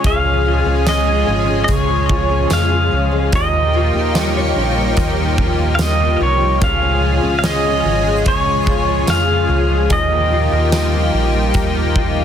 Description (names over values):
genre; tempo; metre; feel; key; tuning
dream pop; 73 BPM; 4/4; straight; Db lydian; A4 = 440 Hz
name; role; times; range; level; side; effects
pedal steel guitar; melody; 0.0-12.2 s; Db5 to F5; -19 LUFS; right 1 dB; ping-pong delay
lush unison pad; sustained chords; 0.0-12.2 s; F3 to Ab4; -20 LUFS; equal; chorus
fingerpicked twelve-string acoustic guitar; arpeggios; 0.0-12.2 s; Db3 to F4; -22 LUFS; left 4 dB; ensemble chorus, ping-pong delay
chorused synth bass; bass; 0.0-12.2 s; Ab1 to F2; -19 LUFS; equal; none
huge arena drum kit; drums; 0.0-12.1 s; hi-hat, kick drum, snare drum, tambourine; -21 LUFS; right 1 dB; none
twinkling granular texture; texture; 0.8-8.9 s; Ab4 to C6; -30 LUFS; left 4 dB; built-in reverb, ping-pong delay
room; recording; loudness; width
light reverb, small room reverb; dense, heavily limited modern master; -13 LUFS; side -9 dB against mid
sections
0.0-12.2 A section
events
none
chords
0.0 Db; 3.3 Ebadd9; 6.6 Db; 9.9 Ebadd9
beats
| 0.04 0.86 1.69 2.51 | 3.33 4.15 4.97 5.80 | 6.62 7.44 8.26 9.08 | 9.91 10.73 11.55